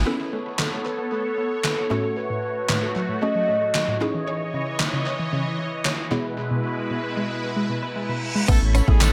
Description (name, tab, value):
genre	dance-pop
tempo	114 BPM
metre	4/4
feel	straight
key	unclear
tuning	A4 = 439 Hz
part	filtered supersaw swell	sustained chords	0.0-9.1 s	B2 to B5	-31 LUFS	equal	sidechain pumping
part	round analog bass	bass	0.0, 8.5-9.1 s	A1	-21 LUFS	equal	sidechain pumping
part	mallet-like synth pluck	accompaniment	0.1-9.1 s	B2 to A4	-31 LUFS	equal	chorus, phaser, sidechain pumping, tape echo
part	unison pluck	arpeggios	0.1-8.4 s	A2 to C#5	-32 LUFS	equal	sidechain pumping, tape echo
part	hollow clarinet-like synth lead	melody	0.6-4.0 s	A4 to D#5	-28 LUFS	equal	chorus, tape echo
part	gated 80s digital drum machine	drums	0.6-9.1 s	crash cymbal, handclaps, hi-hat, kick drum, snare drum	-27 LUFS	equal	gated reverb, gated reverb snare, overdrive, tape echo
part	reverse cymbal	sound effects	7.9-8.5 s	none	-34 LUFS	equal	none
part	clear horn section	melody	8.5-9.1 s	G#3 to A4	-36 LUFS	equal	tape echo
part	direct-recorded clean electric guitar	riff	8.5-9.0 s	B3 to C#4	-33 LUFS	equal	subtle chorus, tape echo
part	tambourine	percussion	8.5-9.1 s	none	-38 LUFS	equal	none
room	moderate spring reverb, RT60 1.8 s, digital ambience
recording	echo-heavy mix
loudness	-24 LUFS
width	mono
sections	0.1-8.5 A section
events	reverse cymbal 7.9-8.5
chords	0.1 Aadd9; 1.9 F#m/A; 4.0 C#madd9; 6.1 E/B; 8.5 Aadd9